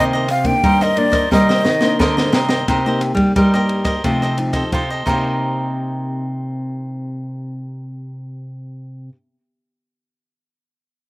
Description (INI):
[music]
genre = samba and choro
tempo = 88 BPM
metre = 4/4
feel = straight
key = C minor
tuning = A4 = 440 Hz
[part]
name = breathy jazz flute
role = melody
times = 0.0-2.0 s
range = D5 to G5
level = -17 LUFS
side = equal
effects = slapback echo
[part]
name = cavaquinho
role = accompaniment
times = 0.0-9.2 s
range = Eb4 to Eb5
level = -22 LUFS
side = right 1 dB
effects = slapback echo
[part]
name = nylon-string guitar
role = accompaniment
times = 0.0-9.2 s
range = G2 to G4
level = -24 LUFS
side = left 2 dB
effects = slapback echo
[part]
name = nylon-string guitar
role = bass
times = 0.0-9.1 s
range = C3 to G3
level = -20 LUFS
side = equal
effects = none
[part]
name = open jazz drum kit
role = drums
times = 0.3-5.2 s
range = crash cymbal, kick drum, ride cymbal, rim click, snare drum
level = -21 LUFS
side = equal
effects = none
[sound]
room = little or no reverb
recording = recorded outdoors, with no room sound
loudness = -15 LUFS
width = side -21 dB against mid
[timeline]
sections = 0.0-2.7 A section; 2.7-5.4 B section; 5.4-8.1 C section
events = drum fill 1.3-2.7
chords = 0.0 Cm9; 2.7 Cm7; 4.0 F7/C; 5.1 Cm7